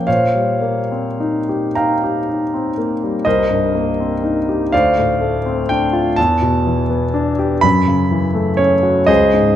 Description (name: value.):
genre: classical, impressionist solo piano.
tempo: 41 BPM (dotted quarters).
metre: 6/8.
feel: rubato.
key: unclear.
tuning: A4 = 440 Hz.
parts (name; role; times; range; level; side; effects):
clear concert grand piano; solo; 0.0-9.6 s; C2 to Cb6; -14 LUFS; equal; none.
room: wet recital hall reverb, RT60 1.5 s.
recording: none.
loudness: -14 LUFS.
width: side -11 dB against mid.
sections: 0.0-9.6 A section.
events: none.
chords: 0.1 Eb13/Bb; 3.3 Cm7; 4.7 Dm7; 6.2 Em7; 7.6 Gbm7.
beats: | 0.07 1.75 | 3.25 4.72 | 6.17 7.63 | 9.09.